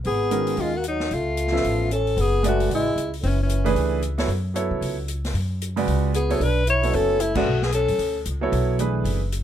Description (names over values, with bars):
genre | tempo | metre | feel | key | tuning
modal jazz | 227 BPM | 4/4 | swing 60% on 8ths | F# minor | A4 = 439 Hz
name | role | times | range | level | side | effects
upright bass | bass | 0.0-9.4 s | F#1 to C#3 | -24 LUFS | equal | none
swinging big-band drum kit | drums | 0.0-9.4 s | crash cymbal, hi-hat, kick drum, snare drum | -34 LUFS | left 2 dB | none
clear alto saxophone | melody | 0.1-3.8, 6.2-8.2 s | B#3 to C#5 | -24 LUFS | left 4 dB | none
trombone with cup mute | second line | 0.1-3.8, 6.1-8.2 s | D3 to E4 | -28 LUFS | right 4 dB | none
clear concert grand piano | accompaniment | 0.3-9.2 s | C#3 to E5 | -25 LUFS | right 4 dB | none
room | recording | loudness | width
light reverb | none | -20 LUFS | side -10 dB against mid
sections
0.0-2.2 A section; 2.2-9.4 B section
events
band accent 7.3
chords
0.0 Abm11; 1.1 Db7alt; 2.2 F#m11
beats
| 0.06 0.32 0.58 0.85 | 1.11 1.38 1.64 1.91 | 2.17 2.44 2.70 2.97 | 3.23 3.50 3.76 4.03 | 4.29 4.55 4.82 5.08 | 5.35 5.61 5.88 6.14 | 6.41 6.67 6.93 7.20 | 7.46 7.73 7.99 8.26 | 8.52 8.79 9.05 9.32